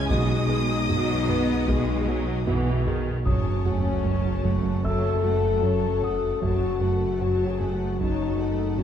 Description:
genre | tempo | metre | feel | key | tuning
cinematic, hybrid orchestral and electronic film score | 76 BPM | 4/4 | straight | unclear | A4 = 439 Hz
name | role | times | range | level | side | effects
warm symphonic violin section | melody | 0.0-8.8 s | F#5 to G#6 | -36 LUFS | left 2 dB | none
warm symphonic violin section | second line | 0.0-8.8 s | A4 to G#5 | -38 LUFS | left 3 dB | none
rich symphonic viola section | accompaniment | 0.0-8.8 s | D#3 to G#4 | -32 LUFS | right 2 dB | none
dark trombone section | sustained chords | 0.0-2.9 s | F#3 to G#3 | -34 LUFS | right 2 dB | none
mellow French horn section | sustained chords | 0.0-8.8 s | C#4 to A4 | -28 LUFS | left 8 dB | none
warm sub bass | bass | 0.0-8.8 s | F#1 to C#2 | -34 LUFS | equal | none
dark baby grand piano | texture | 0.0-8.8 s | D#5 to E6 | -39 LUFS | right 1 dB | ping-pong delay
harp-like synth pluck | arpeggios | 0.1-8.8 s | F#3 to G#4 | -34 LUFS | right 2 dB | chorus, ping-pong delay
smooth synth bass | riff | 0.1-8.8 s | F#2 to B3 | -31 LUFS | right 2 dB | none
rich studio cello section | bass | 0.1-8.8 s | F#2 to B2 | -31 LUFS | right 3 dB | none
rich studio double bass section | bass | 0.1-8.8 s | F#1 to B1 | -30 LUFS | right 2 dB | none
taiko ensemble | drums | 0.1-8.8 s | none | -31 LUFS | equal | none
sub drop | sound effects | 3.3-6.4 s | none | -32 LUFS | equal | none
room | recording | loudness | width
wet concert hall reverb, RT60 1.9 s | none | -22 LUFS | side -9 dB against mid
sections
0.0-3.3 A section; 3.3-8.8 B section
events
impact 3.3-6.4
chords
0.1 B6; 3.3 F#m

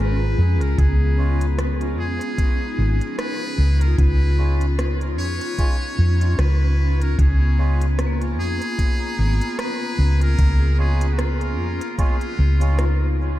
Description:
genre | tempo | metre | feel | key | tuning
ambient dub | 75 BPM | 4/4 | swing 57% on 16ths | Db mixolydian | A4 = 440 Hz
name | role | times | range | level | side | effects
trumpet with metal mute | melody | 0.0-13.1 s | F4 to Db5 | -30 LUFS | equal | dub echo
granular cloud pad | sustained chords | 0.0-13.4 s | Db4 to Bb5 | -31 LUFS | left 1 dB | built-in reverb, vintage 12-bit sampler grit
vibraphone with medium hard mallets | arpeggios | 0.0-13.4 s | Ab3 to Bb5 | -30 LUFS | left 3 dB | dub echo
hollow-body short-scale fingered electric bass | bass | 0.0-13.4 s | Ab1 to F2 | -18 LUFS | equal | none
organic electronic drum kit | drums | 0.6-13.0 s | hi-hat, rim click | -33 LUFS | right 1 dB | overdrive, dub echo
electronic kick drum | drums | 0.8-12.2 s | none | -20 LUFS | equal | none
melodica | stabs | 1.2-12.8 s | Ab3 to Db5 | -35 LUFS | right 4 dB | dub echo
room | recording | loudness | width
small room reverb | none | -17 LUFS | side -15 dB against mid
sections
0.0-13.4 A section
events
none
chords
0.0 Db

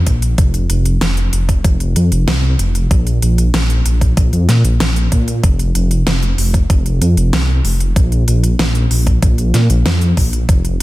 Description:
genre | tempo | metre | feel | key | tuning
synthwave | 95 BPM | 4/4 | straight | unclear | A4 = 439 Hz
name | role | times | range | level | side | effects
dark detuned saw bass | bass | 0.0-10.8 s | F1 to Bb2 | -13 LUFS | equal | tube saturation, sidechain pumping
electronic kick drum | drums | 0.1-10.6 s | none | -13 LUFS | equal | studio reverb
pop drum kit | drums | 0.1-10.8 s | hi-hat, snare drum | -20 LUFS | equal | studio reverb
room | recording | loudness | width
little or no reverb | dense, heavily limited modern master | -12 LUFS | side -17 dB against mid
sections
0.0-10.8 A section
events
none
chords
none

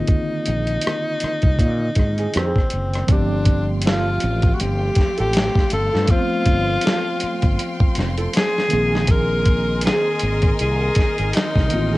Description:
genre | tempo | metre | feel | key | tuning
R&B, neo-soul | 80 BPM | 4/4 | swing 57% on 16ths | unclear | A4 = 440 Hz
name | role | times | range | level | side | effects
breathy tenor saxophone | melody | 0.0-12.0 s | C4 to Bb4 | -23 LUFS | left 1 dB | cassette tape
tine electric piano | accompaniment | 0.0-12.0 s | D3 to C5 | -27 LUFS | right 1 dB | medium stereo tremolo, cassette tape
dusty soul sampler-style drum kit | drums | 0.1-12.0 s | hi-hat, kick drum, rim click, snare drum | -19 LUFS | equal | cassette tape
fretless electric bass | bass | 0.5-12.0 s | F1 to Bb2 | -22 LUFS | equal | none
nylon-string guitar | second line | 2.2-12.0 s | C4 to A4 | -28 LUFS | right 3 dB | cassette tape
bright studio string section | sustained chords | 3.1-12.0 s | A3 to C6 | -31 LUFS | left 1 dB | cassette tape
room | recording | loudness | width
studio ambience | home recording on cassette | -17 LUFS | side -19 dB against mid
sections
0.0-3.1 A section; 3.1-12.0 B section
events
none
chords
0.0 Bb9sus4; 3.1 G9sus4; 8.7 Bb9sus4

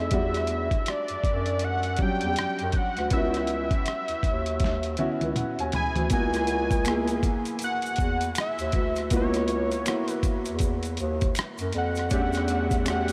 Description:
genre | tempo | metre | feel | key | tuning
R&B, neo-soul | 80 BPM | 4/4 | swing 60% on 16ths | C# dorian from 6.1 s | A4 = 438 Hz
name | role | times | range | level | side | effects
fat analog lead | melody | 0.0-13.1 s | C#5 to G#5 | -32 LUFS | equal | analog delay
warm grand piano | accompaniment | 0.0-13.1 s | F#3 to B5 | -33 LUFS | equal | analog chorus
mellow bass clarinet | bass | 0.0-13.1 s | C#2 to F#2 | -31 LUFS | equal | none
boom bap sampler-style drum kit | drums | 0.1-13.1 s | hi-hat, kick drum, rim click, snare drum, toms | -31 LUFS | equal | overdrive
maracas and finger snaps | percussion | 6.1-13.1 s | none | -44 LUFS | equal | none
bright tonewheel organ | sustained chords | 12.1-13.1 s | A3 to E5 | -40 LUFS | equal | chorus vibrato, slow rotary speaker
room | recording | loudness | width
moderate huge ambient reverb, RT60 8.6 s | dreamy mix soaked in reverb | -26 LUFS | mono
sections
0.0-6.1 A section; 6.1-13.1 B section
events
drum fill 4.6-6.1; grand piano fill 4.6-6.1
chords
0.1 Em9; 3.1 C#m9; 6.1 C#m11; 12.1 Em11

